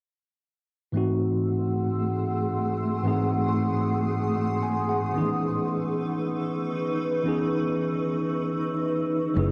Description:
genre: amapiano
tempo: 114 BPM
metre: 4/4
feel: swing 55% on 16ths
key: C# minor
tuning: A4 = 441 Hz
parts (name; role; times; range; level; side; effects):
- tine electric piano; accompaniment; 0.9-9.5 s; G#2 to G#5; -28 LUFS; equal; cassette tape
- granular cloud pad; sustained chords; 1.5-9.5 s; A3 to E6; -31 LUFS; equal; built-in reverb, cassette tape, plate reverb
- fingered electric bass; bass; 9.4-9.5 s; F#1; -25 LUFS; equal; none
room: moderate studio reverb, RT60 0.6 s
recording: home recording on cassette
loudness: -26 LUFS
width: mono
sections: 0.9-9.5 A section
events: tine electric piano fill 4.4-5.2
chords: 0.9 G#7b9b13; 5.2 C#m9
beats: | 0.94 1.47 1.99 2.52 | 3.05 3.57 4.10 4.63 | 5.15 5.68 6.21 6.73 | 7.26 7.78 8.31 8.84 | 9.36

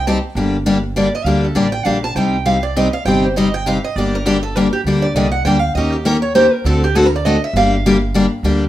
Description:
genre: acoustic string swing (jazz manouche)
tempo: 201 BPM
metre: 3/4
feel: swing 59% on 8ths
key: G minor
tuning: A4 = 439 Hz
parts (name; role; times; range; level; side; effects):
- picked steel-string acoustic guitar; melody; 0.0-8.4 s; G4 to A5; -19 LUFS; right 3 dB; plate reverb
- upright bass; bass; 0.0-8.7 s; G1 to Eb2; -21 LUFS; right 1 dB; none
- picked steel-string acoustic guitar; accompaniment; 0.1-8.6 s; C3 to Bb4; -16 LUFS; left 2 dB; none
room: wet studio ambience, RT60 0.5 s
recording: rough home demo mix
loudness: -13 LUFS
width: side -13 dB against mid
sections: 0.0-8.7 A section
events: steel-string acoustic guitar solo 0.0-8.7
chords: 0.4 Gm; 2.2 Cm; 4.0 Gm; 5.8 Eb7; 6.7 D7; 7.5 Gm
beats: 0.07 | 0.36 0.67 0.96 | 1.26 1.56 1.86 | 2.16 2.46 2.76 | 3.06 3.36 3.66 | 3.96 4.26 4.56 | 4.86 5.16 5.46 | 5.75 6.05 6.35 | 6.65 6.95 7.25 | 7.55 7.84 8.14 | 8.44

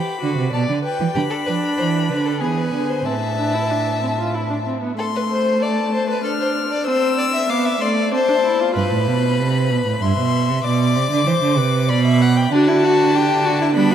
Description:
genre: classical, baroque-style fugue for string quartet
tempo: 96 BPM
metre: 3/4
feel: straight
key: A minor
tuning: A4 = 439 Hz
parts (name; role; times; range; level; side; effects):
- warm violin; melody; 0.0-13.9 s; G5 to F6; -24 LUFS; left 6 dB; none
- rich violin; second line; 0.0-13.9 s; D4 to G5; -21 LUFS; left 3 dB; none
- rich cello; bass; 0.2-4.6, 8.8-13.9 s; G2 to G3; -19 LUFS; right 5 dB; none
- warm viola; accompaniment; 1.1-8.8, 12.5-13.9 s; A3 to F#4; -22 LUFS; right 1 dB; none
room: wet huge ambient reverb, RT60 7.3 s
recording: in a vast, echoing space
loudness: -16 LUFS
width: side -9 dB against mid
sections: 0.0-5.0 A section; 5.0-8.8 B section; 8.8-13.9 C section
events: none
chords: 0.0 Bm; 0.5 Em7/B; 1.2 Bm/D; 2.4 E7; 3.1 A5; 5.0 Am; 6.2 Dm; 6.9 Am/C; 8.8 N.C.; 10.0 C/G; 10.6 Cmaj7sus2/B; 11.9 G/B; 12.5 D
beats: 0.53 | 1.15 1.78 2.41 | 3.05 3.70 4.34 | 4.99 5.62 6.25 | 6.87 7.50 8.13 | 8.76 9.39 10.02 | 10.64 11.26 11.89 | 12.51 13.14 13.76

